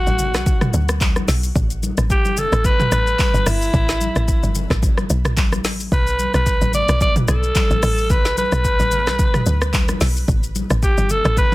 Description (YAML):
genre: amapiano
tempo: 110 BPM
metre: 4/4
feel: swing 55% on 16ths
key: B minor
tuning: A4 = 441 Hz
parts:
  - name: growling alto saxophone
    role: melody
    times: 0.0-11.5 s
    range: E4 to D5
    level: -21 LUFS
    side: equal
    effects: ping-pong delay
  - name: woody log drum bass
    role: bass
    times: 0.0-11.5 s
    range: G1 to D2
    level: -20 LUFS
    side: equal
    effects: none
  - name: deep house drum kit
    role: drums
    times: 0.1-11.5 s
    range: handclaps, hi-hat, kick drum, rim click, shaker, snare drum, toms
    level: -19 LUFS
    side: equal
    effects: soft clipping on snare
  - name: congas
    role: percussion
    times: 0.1-11.5 s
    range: none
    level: -28 LUFS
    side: left 3 dB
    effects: none
room: little or no reverb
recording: dense, heavily limited modern master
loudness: -15 LUFS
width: side -19 dB against mid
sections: 0.0-11.5 A section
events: none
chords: 0.0 Bm7; 1.6 Asus2; 5.9 B7(no3); 10.3 N.C.